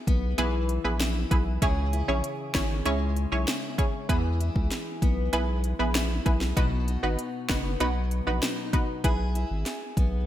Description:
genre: dancehall.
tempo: 97 BPM.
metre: 4/4.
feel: straight.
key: unclear.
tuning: A4 = 440 Hz.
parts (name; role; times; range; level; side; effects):
picked steel-string acoustic guitar; arpeggios; 0.0-10.3 s; B2 to G#4; -34 LUFS; left 3 dB; analog chorus, digital delay.
saturated sub bass; bass; 0.1-10.2 s; F#1 to E2; -27 LUFS; equal; none.
afro-pop drum kit; drums; 0.1-10.1 s; hi-hat, kick drum, snare drum; -27 LUFS; equal; gated reverb.
punchy chord stab; accompaniment; 0.4-9.6 s; B3 to C#5; -30 LUFS; right 1 dB; chorus.
room: light reverb, digital ambience.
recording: bright 1980s-style digital production.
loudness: -24 LUFS.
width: side -12 dB against mid.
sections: 0.0-10.3 A section.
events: none.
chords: 0.0 E; 1.6 C#m; 4.1 E; 6.6 B; 9.0 E.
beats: 0.38 1.00 | 1.62 2.24 2.86 3.48 | 4.09 4.71 5.33 5.95 | 6.57 7.19 7.81 8.42 | 9.04 9.66.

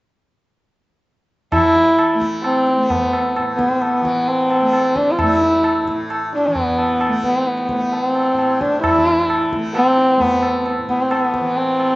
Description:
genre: indian classical, Hindustani.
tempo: 131 BPM.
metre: 4/4.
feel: straight.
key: A raga darbari.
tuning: A4 = 440 Hz.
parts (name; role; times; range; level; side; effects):
dark sarangi; melody; 1.5-12.0 s; B3 to F4; -15 LUFS; equal; slapback echo.
tanpura; drone; 1.5-12.0 s; A2 to A3; -27 LUFS; equal; none.
tabla; percussion; 1.5-12.0 s; none; -23 LUFS; equal; none.
room: little or no reverb.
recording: recorded outdoors, with no room sound, nothing above 7.8 kHz.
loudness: -15 LUFS.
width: side -19 dB against mid.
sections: 1.5-12.0 A section.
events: none.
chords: none.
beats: | 1.53 1.98 2.44 2.90 | 3.36 3.82 4.27 4.73 | 5.19 5.64 6.10 6.56 | 7.01 7.47 7.93 8.38 | 8.84 9.29 9.75 10.20 | 10.66 11.11 11.57.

